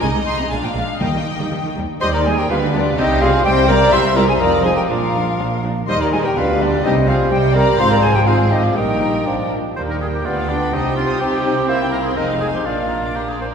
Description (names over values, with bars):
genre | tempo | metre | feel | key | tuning
quick classical-period movement for symphony orchestra | 124 BPM | 2/4 | rubato | Eb major | A4 = 441 Hz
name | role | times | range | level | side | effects
rich studio violin section | melody | 0.0-13.5 s | D5 to C6 | -28 LUFS | left 2 dB | none
clear studio violin section | second line | 0.0-13.5 s | Bb3 to Eb6 | -24 LUFS | left 2 dB | none
rich studio viola section | accompaniment | 0.0-13.4 s | Eb3 to G4 | -24 LUFS | right 1 dB | none
clear studio double bass section | bass | 0.0-13.4 s | F1 to Eb2 | -24 LUFS | right 2 dB | none
rich studio cello section | bass | 0.0-13.4 s | F2 to Eb3 | -23 LUFS | right 1 dB | none
timpani | percussion | 1.0-1.7 s | Eb3 | -27 LUFS | equal | none
clear clarinet | second line | 2.0-13.4 s | D4 to C5 | -24 LUFS | equal | none
silver concert flute | second line | 2.0-9.5 s | D5 to C6 | -21 LUFS | left 1 dB | none
warm oboe | second line | 2.0-13.5 s | D4 to E5 | -26 LUFS | right 1 dB | none
mellow bassoon | accompaniment | 2.0-13.4 s | Eb3 to C4 | -24 LUFS | right 1 dB | none
dark French horn section | sustained chords | 2.3-13.5 s | G3 to G4 | -26 LUFS | left 3 dB | none
room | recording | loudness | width
wet church reverb, RT60 2.6 s | recorded in a church or concert hall | -15 LUFS | side -6 dB against mid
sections
0.0-2.0 A section; 2.0-9.8 B section; 9.8-13.5 B section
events
none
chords
0.0 Ab/C; 0.5 Bb; 1.0 Eb; 2.5 G7/D; 3.0 C5; 3.9 C7; 4.4 Fm7; 4.9 Bb; 5.9 Eb; 6.4 G7/D; 6.8 C5; 7.8 Fm/Ab; 8.8 Eb/Bb; 9.3 Bb; 9.8 Eb; 10.3 G7/D; 10.7 Cm; 11.7 C7; 12.2 Fm7; 12.7 Bb